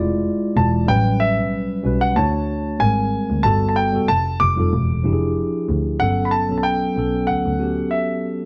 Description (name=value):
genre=lush 1970s-style soul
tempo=94 BPM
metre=4/4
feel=swing 54% on 16ths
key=unclear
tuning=A4 = 441 Hz
part: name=mellow tine electric piano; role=accompaniment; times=0.0-8.5 s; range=F3 to D5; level=-24 LUFS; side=equal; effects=none
part: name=dark double bass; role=bass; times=0.0-7.7 s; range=E1 to F2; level=-24 LUFS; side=equal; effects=none
part: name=warm concert grand piano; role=melody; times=0.6-8.5 s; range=E5 to D6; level=-24 LUFS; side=equal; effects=none
room=light reverb, studio reverb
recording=none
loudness=-19 LUFS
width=mono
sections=0.0-6.0 A section; 6.0-8.5 B section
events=none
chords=0.0 E7b9; 0.9 A13; 2.2 Dmaj7; 2.8 G#maj9; 3.4 Gmaj9; 4.1 F9; 4.7 E7b9; 6.0 Gmaj9#11